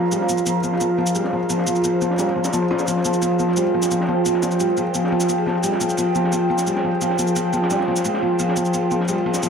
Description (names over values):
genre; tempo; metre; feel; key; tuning
dark technical drum and bass; 174 BPM; 4/4; straight; F minor; A4 = 444 Hz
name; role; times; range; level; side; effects
deep dark ambient pad; sustained chords; 0.0-9.5 s; F4 to C6; -24 LUFS; right 2 dB; chorus, built-in reverb
felt-muted upright piano; arpeggios; 0.0-9.5 s; F3 to F4; -22 LUFS; left 3 dB; ping-pong delay
crunchy breakbeat drum kit; drums; 0.0-9.5 s; ride cymbal, snare drum; -31 LUFS; equal; high-pass filter on cymbals, low-pass filter on cymbals, small room reverb, high-pass filter on snare, low-pass filter on snare, high-pass filter on room, low-pass filter on room
warbly tape-like pad; texture; 0.0-9.5 s; F4 to C6; -23 LUFS; right 2 dB; chorus, built-in reverb
cabasa; drums; 0.1-9.5 s; none; -28 LUFS; equal; small room reverb
room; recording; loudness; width
moderate plate reverb, RT60 2.1 s; none; -18 LUFS; side -6 dB against mid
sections
0.0-9.5 A section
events
none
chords
0.0 Fmadd9